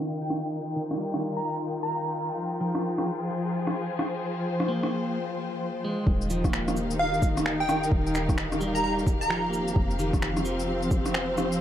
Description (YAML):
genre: future garage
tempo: 130 BPM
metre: 4/4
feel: swing 63% on 16ths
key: unclear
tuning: A4 = 440 Hz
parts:
  - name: warm symphonic string section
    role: sustained chords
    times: 0.0-11.6 s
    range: Eb3 to G5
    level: -29 LUFS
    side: left 1 dB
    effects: sidechain pumping
  - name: plucky unison lead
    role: melody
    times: 0.2-2.3, 7.0-9.7 s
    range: F5 to Bb5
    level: -32 LUFS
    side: equal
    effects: analog delay
  - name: electronic rim click, shaker, cabasa and finger snaps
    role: drums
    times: 0.3-11.6 s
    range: none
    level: -31 LUFS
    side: equal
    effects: overdrive
  - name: electric guitar at the edge of break-up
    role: accompaniment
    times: 0.8-10.9 s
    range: Eb3 to C4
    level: -34 LUFS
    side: right 1 dB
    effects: vintage 12-bit sampler grit, sidechain pumping, tape echo
  - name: soft 808-style bass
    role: bass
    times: 6.1-11.6 s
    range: Eb1 to F1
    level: -34 LUFS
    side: equal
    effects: sidechain pumping
  - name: electronic kick drum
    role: drums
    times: 6.1-11.0 s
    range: none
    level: -25 LUFS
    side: equal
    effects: overdrive
room: light reverb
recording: vinyl crackle, low-pass filter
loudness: -25 LUFS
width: side -10 dB against mid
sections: 0.0-6.1 A section; 6.1-11.6 B section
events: filter sweep 0.0-6.1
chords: 0.0 Ebadd9; 2.4 Fmadd9; 6.1 Ebadd9; 9.8 Fsus2